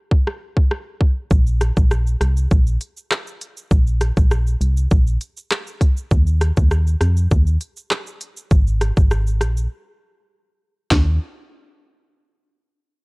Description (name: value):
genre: dancehall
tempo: 100 BPM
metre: 4/4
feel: straight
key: unclear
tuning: A4 = 441 Hz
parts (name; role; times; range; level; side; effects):
- island pop drum kit; drums; 0.1-11.1 s; handclaps, hi-hat, kick drum, rim click, shaker, snare drum; -17 LUFS; equal; overdrive
- organ-like FM bass; bass; 1.3-11.2 s; Ab1 to F2; -17 LUFS; equal; none
room: little or no reverb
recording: dry, gritty hardware recording, cassette tape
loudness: -16 LUFS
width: side -31 dB against mid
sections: 0.0-1.3 A section; 1.3-10.9 B section; 10.9-13.0 C section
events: break 9.7-10.9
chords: none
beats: 0.11 0.71 | 1.31 1.91 2.51 3.11 | 3.71 4.31 4.91 5.51 | 6.11 6.71 7.31 7.91 | 8.51 9.11 9.71 10.31 | 10.91